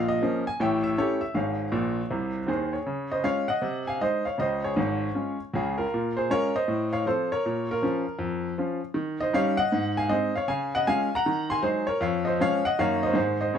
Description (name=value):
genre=jazz, stride piano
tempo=157 BPM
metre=4/4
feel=swing 64% on 8ths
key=Db major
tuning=A4 = 440 Hz
part: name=bright grand piano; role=solo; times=0.0-13.6 s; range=Ab1 to C6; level=-24 LUFS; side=equal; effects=none
room=moderate studio ambience, RT60 0.5 s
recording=band playing live in one room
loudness=-24 LUFS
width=side -8 dB against mid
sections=0.0-2.9 A section; 2.9-13.6 B section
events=grand piano fill 1.7-2.9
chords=0.0 Bbm; 0.6 A7; 1.3 Db/Ab; 2.1 Ab; 2.9 Db; 3.6 Ab/C; 4.4 Db; 5.9 Bbm7; 6.7 F/A; 7.4 Bbm; 9.0 Eb7; 9.7 Ab; 10.5 Db; 11.2 Ab5/Eb; 12.0 Db/F; 12.8 Ebm/Gb; 13.2 Ab